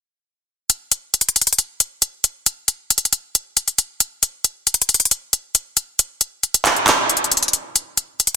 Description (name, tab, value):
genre	hip hop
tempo	136 BPM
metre	4/4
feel	half-time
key	none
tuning	none
part	trap drum kit	drums	0.7-8.3 s	handclaps, hi-hat	-14 LUFS	left 1 dB	none
room	moderate recital hall reverb, RT60 1.5 s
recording	dense, heavily limited modern master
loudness	-16 LUFS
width	side -6 dB against mid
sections	0.7-7.8 A section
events	kick muted 7.8-8.4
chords	none